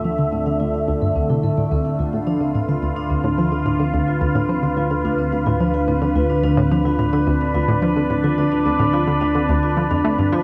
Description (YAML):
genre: ambient, sequencer-driven space music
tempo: 108 BPM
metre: 4/4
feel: straight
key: D dorian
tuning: A4 = 440 Hz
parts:
  - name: evolving wavetable pad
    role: sustained chords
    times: 0.0-10.4 s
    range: D3 to E5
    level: -23 LUFS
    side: equal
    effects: phaser, built-in reverb
  - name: vibraphone with soft mallets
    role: arpeggios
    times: 0.0-10.4 s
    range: C4 to D5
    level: -26 LUFS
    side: equal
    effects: delay
  - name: analog pluck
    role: riff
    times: 0.0-10.4 s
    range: D2 to A3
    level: -24 LUFS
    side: equal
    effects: chorus, delay
  - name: fat analog bass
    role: bass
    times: 0.0-10.4 s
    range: D2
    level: -30 LUFS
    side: equal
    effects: none
room: wet huge ambient reverb, RT60 8.1 s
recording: none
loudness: -19 LUFS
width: mono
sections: 0.0-10.4 A section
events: fade-in on vibraphone 0.0-10.4; filter sweep on synth arpeggio sound 0.0-10.4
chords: 0.0 Dm